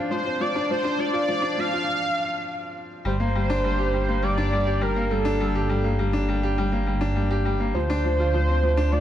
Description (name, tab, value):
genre	piano and strings electronica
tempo	102 BPM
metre	4/4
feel	straight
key	G minor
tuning	A4 = 437 Hz
part	clear upright piano	riff	0.0-9.0 s	F3 to G4	-25 LUFS	left 2 dB	digital delay
part	warm velvety synth lead	melody	0.1-9.0 s	A4 to F5	-26 LUFS	right 1 dB	chorus
part	dark detuned saw bass	bass	3.0-9.0 s	G1 to D2	-24 LUFS	right 1 dB	none
room	moderate scoring stage reverb, RT60 1.6 s, small room ambience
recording	none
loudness	-21 LUFS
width	side -11 dB against mid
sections	0.0-3.0 A section; 3.0-9.0 B section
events	build-up 0.0-3.0; break 1.9-3.0; drop 3.0-9.0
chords	0.0 Dm7; 3.0 Gm; 7.8 Dm7